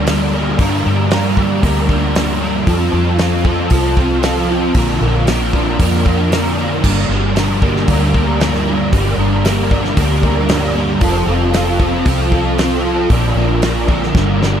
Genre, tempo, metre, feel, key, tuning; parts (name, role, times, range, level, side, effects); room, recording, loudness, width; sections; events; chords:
rock, shoegaze and dream pop; 115 BPM; 4/4; straight; G minor; A4 = 439 Hz
overdriven semi-hollow guitar; riff; 0.0-14.6 s; G2 to Bb4; -15 LUFS; right 1 dB; ensemble chorus
vintage muted fingered electric bass; bass; 0.0-14.6 s; F1 to G2; -18 LUFS; equal
loose indie drum kit; drums; 0.1-14.5 s; crash cymbal, hi-hat, kick drum, snare drum; -18 LUFS; equal
moderate huge ambient reverb, RT60 6.9 s; dreamy mix soaked in reverb; -12 LUFS; side -9 dB against mid
0.0-14.6 A section
drum fill 14.1-14.6
0.0 Gm; 2.7 F; 4.8 Bb; 6.8 Gm; 11.0 F; 13.1 Bb